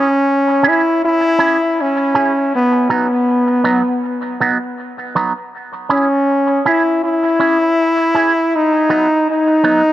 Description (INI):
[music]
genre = reggae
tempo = 80 BPM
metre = 4/4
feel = swing 62% on 16ths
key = C# minor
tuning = A4 = 440 Hz
[part]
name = brilliant trombone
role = melody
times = 0.0-9.9 s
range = B3 to E4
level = -13 LUFS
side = left 1 dB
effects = dub echo
[part]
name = electric guitar with an envelope filter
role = accompaniment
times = 0.0-9.8 s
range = F#3 to G#4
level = -19 LUFS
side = right 4 dB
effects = phaser, dub echo
[sound]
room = moderate plate reverb, RT60 2.7 s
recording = echo-heavy mix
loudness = -12 LUFS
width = side -13 dB against mid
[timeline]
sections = 0.0-9.9 A section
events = none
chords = 0.0 C#m; 2.5 B; 5.5 C#m; 8.5 B